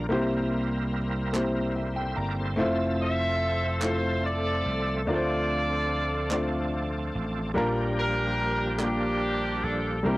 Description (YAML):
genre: slow gospel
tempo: 48 BPM (dotted quarters)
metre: 6/8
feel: straight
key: unclear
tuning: A4 = 440 Hz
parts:
  - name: dark baby grand piano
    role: accompaniment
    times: 0.0-10.2 s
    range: Bb2 to Bb5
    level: -29 LUFS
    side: left 1 dB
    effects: cassette tape
  - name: bright tonewheel organ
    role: sustained chords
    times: 0.0-10.2 s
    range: E3 to E5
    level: -33 LUFS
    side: right 1 dB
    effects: slow rotary speaker, overdrive, chorus vibrato, cassette tape
  - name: vintage slap bass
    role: bass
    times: 0.0-10.2 s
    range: F1 to D2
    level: -31 LUFS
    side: equal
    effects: tube saturation
  - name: group handclap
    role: percussion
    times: 1.3-9.2 s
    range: none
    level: -34 LUFS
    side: right 2 dB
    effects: none
  - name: clear horn section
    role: melody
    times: 3.0-10.2 s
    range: Bb3 to E5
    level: -28 LUFS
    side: equal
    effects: cassette tape
room: light reverb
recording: home recording on cassette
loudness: -25 LUFS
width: side -19 dB against mid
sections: 0.0-10.2 A section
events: grand piano fill 1.3-2.6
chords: 0.1 C7; 2.6 Fmaj7; 5.1 Dm7; 7.6 Bb6